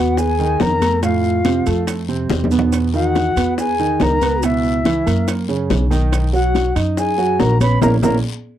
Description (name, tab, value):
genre	Afro-Cuban jazz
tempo	141 BPM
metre	4/4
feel	straight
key	B major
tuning	A4 = 439 Hz
part	mellow jazz flute	melody	0.0-8.2 s	E5 to B5	-21 LUFS	left 2 dB	none
part	breathy mellow round clay ocarina	second line	0.0-8.2 s	E4 to B4	-22 LUFS	left 4 dB	none
part	warm grand piano	accompaniment	0.0-8.2 s	A2 to D#5	-20 LUFS	right 6 dB	none
part	upright bass	bass	0.0-8.2 s	A#1 to F#2	-20 LUFS	equal	none
part	bongos	percussion	0.2-8.1 s	none	-26 LUFS	left 8 dB	none
part	congas	percussion	0.2-8.1 s	none	-24 LUFS	left 3 dB	none
part	guiro	percussion	0.2-8.1 s	none	-36 LUFS	left 11 dB	none
part	maracas	percussion	0.2-8.1 s	none	-35 LUFS	right 9 dB	none
part	timbales	percussion	0.6-8.1 s	none	-26 LUFS	right 7 dB	none
room	little or no reverb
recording	dry, close 1970s-style studio recording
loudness	-14 LUFS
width	side -11 dB against mid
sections	0.0-8.6 A section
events	drum fill 2.3-2.7; band accent 7.8-8.6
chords	0.0 G#m7; 1.0 F; 2.7 Emaj7; 4.4 C#m7; 5.3 F#; 6.1 Bmaj7; 7.8 A#dim